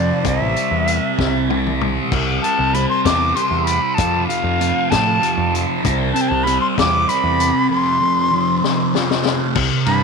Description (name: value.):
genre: psychedelic rock.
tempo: 64 BPM (dotted quarters).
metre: 6/8.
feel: straight.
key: unclear.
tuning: A4 = 442 Hz.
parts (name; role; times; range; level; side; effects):
bright reedy jazz flute; melody; 0.0-10.0 s; D5 to D6; -19 LUFS; equal; tape echo.
thick fuzz guitar; riff; 0.0-10.0 s; F2 to C4; -19 LUFS; right 1 dB; distortion, phaser.
growling picked electric bass; bass; 0.0-10.0 s; A1 to A2; -22 LUFS; right 1 dB; overdrive.
vintage drum kit; drums; 0.2-10.0 s; crash cymbal, hi-hat, kick drum, ride cymbal, snare drum, toms; -23 LUFS; left 9 dB; none.
room: light reverb, studio reverb.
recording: 1960s-style stereo.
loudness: -15 LUFS.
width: side -5 dB against mid.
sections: 0.0-2.1 A section; 2.1-9.6 B section.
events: drum fill 1.2-2.1, 8.6-9.6.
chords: 0.2 C; 4.0 F; 5.8 Cmaj7; 7.7 F5.